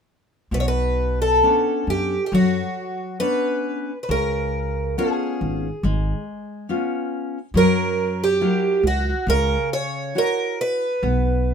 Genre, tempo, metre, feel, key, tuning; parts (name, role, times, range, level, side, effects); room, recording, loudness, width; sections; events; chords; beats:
fado-style ballad; 69 BPM; 4/4; rubato; B minor; A4 = 441 Hz
picked twelve-string acoustic guitar; melody; 0.5-11.5 s; F#4 to C#5; -22 LUFS; right 2 dB
nylon-string guitar; accompaniment; 0.5-11.5 s; B2 to C#5; -24 LUFS; left 2 dB
upright bass; bass; 0.5-11.5 s; G#1 to F#2; -24 LUFS; equal
light reverb; minimal, uncompressed stereo recording; -19 LUFS; side -7 dB against mid
0.5-11.5 A section
0.5 Bmadd9; 4.1 C#7; 7.5 F#7; 11.0 N.C.
| 0.52 1.42 2.32 3.20 | 4.09 4.97 5.84 6.69 | 7.54 8.40 9.26 10.14 | 11.02